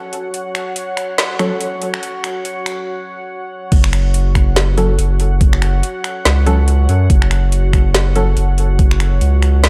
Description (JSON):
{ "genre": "deep dubstep", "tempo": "142 BPM", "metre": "4/4", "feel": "swing 57% on 16ths, half-time", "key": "unclear", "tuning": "A4 = 440 Hz", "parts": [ { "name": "deep dark ambient pad", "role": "sustained chords", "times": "0.0-9.7 s", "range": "F#4 to F#5", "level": "-27 LUFS", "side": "equal", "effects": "chorus, built-in reverb" }, { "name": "garage drum kit", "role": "drums", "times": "0.1-9.7 s", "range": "crash cymbal, finger snaps, hi-hat, snare drum", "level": "-22 LUFS", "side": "equal", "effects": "overdrive, high-pass filter on hats, high-pass filter on snare, high-pass filter on cymbals" }, { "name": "filtered dub chord stab", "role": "stabs", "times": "1.4-1.5, 4.8-8.2 s", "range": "F#3 to A4", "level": "-25 LUFS", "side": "equal", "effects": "analog chorus, dub echo" }, { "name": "saturated sub bass", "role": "bass", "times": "3.7-9.7 s", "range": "F#1 to F#2", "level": "-16 LUFS", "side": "equal", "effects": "none" }, { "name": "electronic kick drum", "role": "drums", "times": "3.7-8.9 s", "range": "none", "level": "-14 LUFS", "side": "equal", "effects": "overdrive" } ], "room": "light reverb", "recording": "dark, warm production", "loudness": "-15 LUFS", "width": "mono", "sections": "0.0-3.7 A section; 3.7-9.7 B section", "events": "build-up 0.0-3.7; break 2.9-3.7; drop 3.7-9.7", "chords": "0.0 F#5" }